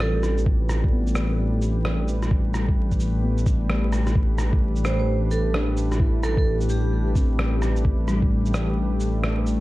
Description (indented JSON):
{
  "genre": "future garage",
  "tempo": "130 BPM",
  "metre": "4/4",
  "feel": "swing 63% on 16ths",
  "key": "A minor",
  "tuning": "A4 = 442 Hz",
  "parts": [
    { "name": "vibraphone with hard mallets", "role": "melody", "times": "0.0-0.4, 4.9-7.1 s", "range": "G4 to C5", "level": "-31 LUFS", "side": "right 4 dB", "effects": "tape echo" },
    { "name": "tine electric piano", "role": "accompaniment", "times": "0.0-9.6 s", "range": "G3 to F4", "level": "-31 LUFS", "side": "left 2 dB", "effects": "sidechain pumping, tape echo" },
    { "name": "warbly tape-like pad", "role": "sustained chords", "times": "0.0-9.6 s", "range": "G3 to B4", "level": "-30 LUFS", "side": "left 2 dB", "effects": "chorus, built-in reverb, sidechain pumping" },
    { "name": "dark detuned saw bass", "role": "bass", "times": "0.0-9.6 s", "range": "A1", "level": "-23 LUFS", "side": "equal", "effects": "sidechain pumping" },
    { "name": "electronic rim click and shaker", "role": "drums", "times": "0.0-9.6 s", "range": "none", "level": "-31 LUFS", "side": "equal", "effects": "none" },
    { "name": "electronic kick drum", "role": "drums", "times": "0.5-8.3 s", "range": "none", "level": "-22 LUFS", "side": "equal", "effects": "none" }
  ],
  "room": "little or no reverb",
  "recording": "dark, warm production, vinyl crackle",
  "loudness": "-20 LUFS",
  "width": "side -18 dB against mid",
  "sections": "0.0-9.6 A section",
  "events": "none",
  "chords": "0.0 Fadd9/A; 4.2 Am7"
}